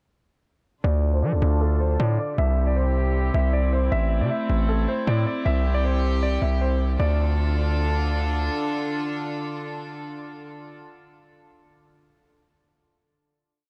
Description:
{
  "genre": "hip hop, trap",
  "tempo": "156 BPM",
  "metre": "4/4",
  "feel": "half-time",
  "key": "D minor",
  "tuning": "A4 = 440 Hz",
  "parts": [
    { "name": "dark concert grand piano", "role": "melody", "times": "0.8-8.1 s", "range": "A4 to E5", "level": "-32 LUFS", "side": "equal", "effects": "low-pass filter, tape echo" },
    { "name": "rich chamber string section", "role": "sustained chords", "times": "0.8-10.8 s", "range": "C3 to A4", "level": "-31 LUFS", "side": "equal", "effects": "low-pass filter" },
    { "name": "distorted 808-style bass", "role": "bass", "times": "0.8-8.5 s", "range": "A1 to F3", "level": "-24 LUFS", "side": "equal", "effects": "distortion" }
  ],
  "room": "light reverb, small room ambience",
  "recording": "none",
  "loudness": "-23 LUFS",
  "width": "mono",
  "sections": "0.8-7.0 breakdown; 7.0-10.1 final chord",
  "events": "filter sweep 0.8-7.0",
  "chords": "0.8 Dm; 2.4 C; 3.9 Am; 5.5 C; 7.0 Dm"
}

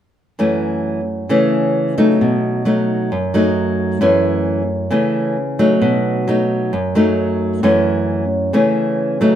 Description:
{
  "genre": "bossa nova",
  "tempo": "133 BPM",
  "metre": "4/4",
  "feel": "straight",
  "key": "unclear",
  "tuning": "A4 = 441 Hz",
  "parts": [
    { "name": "nylon-string guitar", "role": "accompaniment", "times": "0.4-9.4 s", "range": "F#2 to D#4", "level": "-14 LUFS", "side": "equal", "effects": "none" }
  ],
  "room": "light reverb",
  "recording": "minimal, uncompressed stereo recording",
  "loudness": "-14 LUFS",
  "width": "side -10 dB against mid",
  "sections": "0.4-9.4 A section",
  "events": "none",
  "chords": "0.4 F#m7; 2.2 B7; 4.0 F#m7; 5.8 B7; 7.6 F#m7"
}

